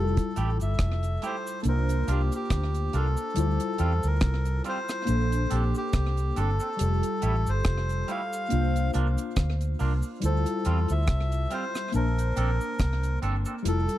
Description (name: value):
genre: lovers rock reggae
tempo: 70 BPM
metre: 4/4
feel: swing 56% on 16ths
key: F major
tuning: A4 = 439 Hz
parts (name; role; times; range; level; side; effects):
- melodica; melody; 0.0-14.0 s; G4 to F5; -33 LUFS; equal; tape echo
- tine electric piano; accompaniment; 0.0-14.0 s; G3 to A5; -32 LUFS; left 3 dB; phaser, slapback echo
- vintage muted fingered electric bass; bass; 0.0-13.9 s; F1 to E2; -25 LUFS; equal; none
- deep reggae drum kit; drums; 0.2-14.0 s; hi-hat, kick drum, rim click; -28 LUFS; equal; slapback echo
- cabasa; percussion; 0.2-14.0 s; none; -49 LUFS; right 1 dB; slapback echo
- twangy electric guitar; stabs; 0.4-13.5 s; G3 to A4; -36 LUFS; right 4 dB; spring reverb
room: little or no reverb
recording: dry, close 1970s-style studio recording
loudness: -24 LUFS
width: side -14 dB against mid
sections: 0.0-14.0 A section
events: none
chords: 0.0 Fmaj9; 1.6 C9sus4; 3.4 Dm11; 5.1 Bbmaj9; 6.8 Fmaj9; 8.5 C9sus4; 10.2 Dm11; 11.9 Bbmaj9